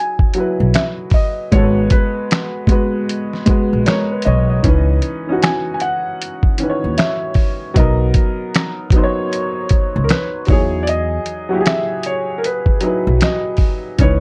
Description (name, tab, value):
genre	lo-fi hip hop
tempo	77 BPM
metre	4/4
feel	swing 61% on 16ths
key	unclear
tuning	A4 = 440 Hz
part	felt-muted upright piano	melody	0.0-14.2 s	A#4 to G#5	-26 LUFS	equal	low-pass filter
part	warm upright piano	accompaniment	0.0-14.2 s	D#3 to D#5	-22 LUFS	equal	cassette tape, low-pass filter
part	lo-fi sampler-style drum kit	drums	0.2-14.2 s	finger snaps, hi-hat, kick drum, snare drum	-18 LUFS	equal	overdrive
part	upright bass	bass	0.6-14.2 s	G#1 to E2	-19 LUFS	equal	none
room	moderate small room reverb, RT60 0.6 s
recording	none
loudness	-17 LUFS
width	mono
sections	0.0-14.2 A section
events	none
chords	0.0 Emaj9; 1.5 G#m9; 4.6 C#m9; 7.8 Bmaj7; 10.5 Emaj9